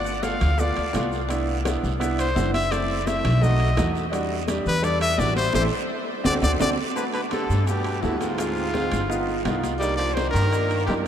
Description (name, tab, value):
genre	Afro-Cuban jazz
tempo	169 BPM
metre	4/4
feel	straight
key	G major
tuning	A4 = 440 Hz
part	bright trumpet	melody	0.0-11.1 s	E4 to F5	-26 LUFS	left 2 dB	none
part	warm concert grand piano	accompaniment	0.0-11.1 s	G3 to A4	-27 LUFS	right 1 dB	none
part	upright bass	bass	0.0-11.1 s	F#1 to G2	-25 LUFS	equal	none
part	congas	percussion	0.1-11.1 s	none	-34 LUFS	left 2 dB	none
part	maracas	percussion	0.1-11.1 s	none	-42 LUFS	left 12 dB	none
part	bongos	percussion	0.2-11.1 s	none	-37 LUFS	left 8 dB	none
part	guiro	percussion	0.2-11.1 s	none	-41 LUFS	right 10 dB	none
part	timbales	percussion	0.2-11.1 s	none	-34 LUFS	right 5 dB	none
part	bright baritone saxophone	second line	7.0-11.1 s	G2 to G3	-31 LUFS	right 4 dB	none
room	wet huge ambient reverb, RT60 7.7 s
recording	in a vast, echoing space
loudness	-21 LUFS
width	side -9 dB against mid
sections	0.0-7.0 A section; 7.0-11.1 B section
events	trumpet solo 0.0-7.0; band accent 5.5-7.0; drum fill 6.1-7.0; grand piano fill 6.3-7.0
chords	0.0 G7; 1.3 Cmaj7; 2.7 F#m7b5; 3.4 B7; 4.1 Em7; 5.5 Am; 6.3 D7; 7.0 Gmaj7; 8.4 Dm7b5; 9.1 Gaug7; 9.8 Cm7